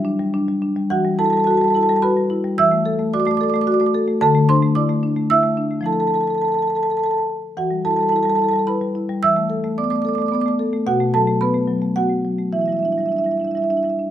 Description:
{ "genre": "classical, contemporary piece for solo marimba", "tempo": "108 BPM", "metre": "3/4", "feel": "rubato", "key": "E minor", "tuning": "A4 = 443 Hz", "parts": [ { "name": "marimba with medium mallets", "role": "solo", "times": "0.0-14.1 s", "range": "B2 to E6", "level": "-16 LUFS", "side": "equal", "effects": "none" } ], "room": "moderate recital hall reverb, RT60 1.4 s", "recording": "minimal, uncompressed stereo recording", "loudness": "-16 LUFS", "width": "side -11 dB against mid", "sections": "0.9-14.1 A section", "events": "none", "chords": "0.0 Em7; 0.9 Emadd9; 2.6 E9sus4; 4.2 Dsus2; 5.9 Fmaj7; 7.6 Emadd9; 9.2 Bm7/E; 10.9 B5; 12.5 Em7" }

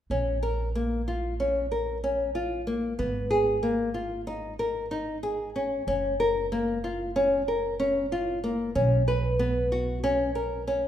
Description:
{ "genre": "contemporary instrumental, chamber music in an uneven meter", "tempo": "187 BPM (eighths)", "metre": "9/8", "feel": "straight", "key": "Bb phrygian", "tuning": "A4 = 438 Hz", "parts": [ { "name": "nylon-string guitar", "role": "arpeggios", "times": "0.1-10.9 s", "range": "Bb3 to B4", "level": "-26 LUFS", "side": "left 1 dB", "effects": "none" }, { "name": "upright bass", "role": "bass", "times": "0.1-10.9 s", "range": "Gb1 to B1", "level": "-32 LUFS", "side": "right 1 dB", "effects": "none" } ], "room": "wet recital hall reverb, RT60 1.3 s", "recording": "recorded in a church or concert hall", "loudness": "-25 LUFS", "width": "side -10 dB against mid", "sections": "0.1-10.9 A section", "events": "none", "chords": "0.1 Bbm; 3.0 Absus2; 5.9 Gbmaj7; 8.8 Bsus2" }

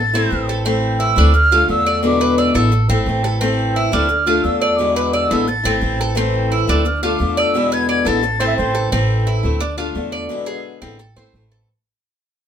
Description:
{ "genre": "latin", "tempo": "174 BPM", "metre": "4/4", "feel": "straight", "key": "A harmonic minor", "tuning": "A4 = 440 Hz", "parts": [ { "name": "concert flute", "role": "melody", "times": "0.0-8.8 s", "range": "D6 to A6", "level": "-19 LUFS", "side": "right 1 dB", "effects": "none" }, { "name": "Cuban tres", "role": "arpeggios", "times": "0.0-11.7 s", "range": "C4 to D5", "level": "-21 LUFS", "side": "right 2 dB", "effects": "none" }, { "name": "upright bass", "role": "bass", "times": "0.0-11.6 s", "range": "G#1 to E2", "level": "-20 LUFS", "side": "right 1 dB", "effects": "none" }, { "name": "picked swing-style acoustic guitar", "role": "accompaniment", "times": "0.1-11.7 s", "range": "B2 to F4", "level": "-20 LUFS", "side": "left 3 dB", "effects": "none" }, { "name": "dark trumpet", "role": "second line", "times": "8.4-8.9 s", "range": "C5 to E5", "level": "-21 LUFS", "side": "right 4 dB", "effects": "none" } ], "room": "wet small room reverb, RT60 0.6 s", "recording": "minimal, uncompressed stereo recording", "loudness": "-14 LUFS", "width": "side -8 dB against mid", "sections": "0.0-8.9 A section; 8.9-11.7 B section", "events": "fade-out 8.9-11.7", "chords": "0.0 Am; 1.3 Dm; 2.0 E7; 2.7 Am; 4.1 Dm; 4.8 E7; 5.5 Am; 6.9 Dm; 7.5 E7; 8.2 Am; 9.6 Dm; 10.3 E7; 11.0 Am" }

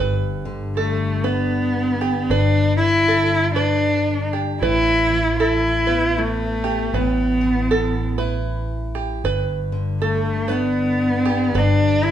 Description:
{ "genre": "folk", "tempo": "78 BPM", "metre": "3/4", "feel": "swing 61% on 8ths", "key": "G major", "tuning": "A4 = 445 Hz", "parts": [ { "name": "fingerpicked steel-string acoustic guitar", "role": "accompaniment", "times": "0.0-12.1 s", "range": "G2 to E4", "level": "-26 LUFS", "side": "left 1 dB", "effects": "none" }, { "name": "open-back banjo", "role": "arpeggios", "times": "0.0-12.1 s", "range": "G4 to B4", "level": "-26 LUFS", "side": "right 6 dB", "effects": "none" }, { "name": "fingered electric bass", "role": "bass", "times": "0.0-12.1 s", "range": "G1 to A1", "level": "-24 LUFS", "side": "left 1 dB", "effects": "none" }, { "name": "warm cello", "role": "melody", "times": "0.8-12.1 s", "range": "A3 to E4", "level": "-19 LUFS", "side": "equal", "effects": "none" } ], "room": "moderate large studio reverb, RT60 1.2 s", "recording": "band playing live in one room", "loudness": "-17 LUFS", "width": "side -10 dB against mid", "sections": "0.0-12.1 A section", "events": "none", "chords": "0.0 G; 4.6 Asus2; 9.2 G" }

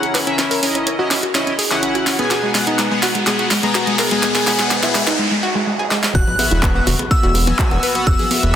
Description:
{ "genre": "progressive house", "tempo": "125 BPM", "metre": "4/4", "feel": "straight", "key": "unclear", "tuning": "A4 = 440 Hz", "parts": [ { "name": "analog pluck", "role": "arpeggios", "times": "0.0-8.5 s", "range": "G#3 to B4", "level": "-21 LUFS", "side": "equal", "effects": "chorus, sidechain pumping, tape echo" }, { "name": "chorused polysynth", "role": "stabs", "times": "0.0-8.6 s", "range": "B3 to A#5", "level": "-20 LUFS", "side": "left 1 dB", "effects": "sidechain pumping, tape echo" }, { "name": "pop drum kit", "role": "drums", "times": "0.0-8.5 s", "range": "handclaps, hi-hat, snare drum", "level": "-20 LUFS", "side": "right 1 dB", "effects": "sidechain pumping on hats, high-pass filter on hats, soft clipping on snare, high-pass filter on snare, high-pass filter on room" }, { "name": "riser, noise sweep and impact", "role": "sound effects", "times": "0.8-8.1 s", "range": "none", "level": "-25 LUFS", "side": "equal", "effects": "none" }, { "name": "drifting glass-harmonics texture", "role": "texture", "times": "0.0-8.6 s", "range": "A#3 to A#6", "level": "-35 LUFS", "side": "right 1 dB", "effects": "none" }, { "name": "glassy synth bell", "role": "melody", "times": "6.1-8.6 s", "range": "E6 to F#6", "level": "-22 LUFS", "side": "left 1 dB", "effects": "chorus, tape echo" }, { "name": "soft supersaw", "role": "second line", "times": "6.1-8.6 s", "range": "E6 to F#6", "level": "-28 LUFS", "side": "left 1 dB", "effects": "sidechain pumping, tape echo" }, { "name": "fat analog bass", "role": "bass", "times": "6.1-8.6 s", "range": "E1", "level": "-18 LUFS", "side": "equal", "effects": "sidechain pumping" }, { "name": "electronic kick drum", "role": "drums", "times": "6.1-8.2 s", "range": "none", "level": "-17 LUFS", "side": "equal", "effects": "none" }, { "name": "congas and bongos", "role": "percussion", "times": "6.3-8.4 s", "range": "none", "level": "-28 LUFS", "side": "left 3 dB", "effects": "sidechain pumping on perc" } ], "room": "wet lush hall reverb, RT60 1.8 s", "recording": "dense, heavily limited modern master", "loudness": "-14 LUFS", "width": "side -10 dB against mid", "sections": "0.0-6.1 A section; 6.1-8.6 B section", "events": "build-up 0.0-6.1; drum fill 0.0-5.2, 5.9; filter sweep on synth pluck 0.0-6.1; riser 0.8-5.2; noise sweep 4.2-6.1; break 5.2-6.1; drop 6.1-8.6; impact 6.1-8.1", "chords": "0.0 C#madd9; 2.3 G#m7; 6.1 Esus2" }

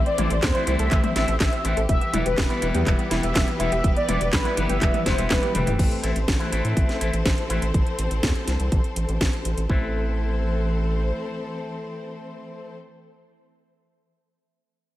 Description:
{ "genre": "italo disco", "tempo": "123 BPM", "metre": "4/4", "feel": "straight", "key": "A minor", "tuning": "A4 = 440 Hz", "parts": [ { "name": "rich symphonic string section", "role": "sustained chords", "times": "0.0-12.8 s", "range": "E3 to C5", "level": "-31 LUFS", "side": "left 2 dB", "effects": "none" }, { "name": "wide unison pluck", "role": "arpeggios", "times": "0.0-5.7 s", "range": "G3 to E5", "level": "-33 LUFS", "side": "right 3 dB", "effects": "tape echo" }, { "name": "round analog bass", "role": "bass", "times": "0.0-11.1 s", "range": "E1 to A2", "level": "-25 LUFS", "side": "equal", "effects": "tube saturation" }, { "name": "mellow synth brass", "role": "melody", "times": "0.1-5.7 s", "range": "B4 to E5", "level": "-27 LUFS", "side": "equal", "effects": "chorus, cassette tape, tape echo" }, { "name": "house drum kit", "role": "drums", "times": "0.1-9.7 s", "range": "crash cymbal, handclaps, hi-hat, snare drum, toms", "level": "-27 LUFS", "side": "left 1 dB", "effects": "gated reverb" }, { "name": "electric guitar with an envelope filter", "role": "stabs", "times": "0.2-12.7 s", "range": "E3 to G4", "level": "-30 LUFS", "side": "left 1 dB", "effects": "none" }, { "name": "electronic kick drum", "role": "drums", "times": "0.4-9.8 s", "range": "none", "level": "-23 LUFS", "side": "equal", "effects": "none" } ], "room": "light reverb", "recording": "none", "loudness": "-20 LUFS", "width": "side -14 dB against mid", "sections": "0.0-5.8 A section; 5.8-9.7 B section; 9.7-13.6 C section", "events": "drum fill 5.3-5.8", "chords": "0.0 Am; 1.9 Em; 5.8 Am" }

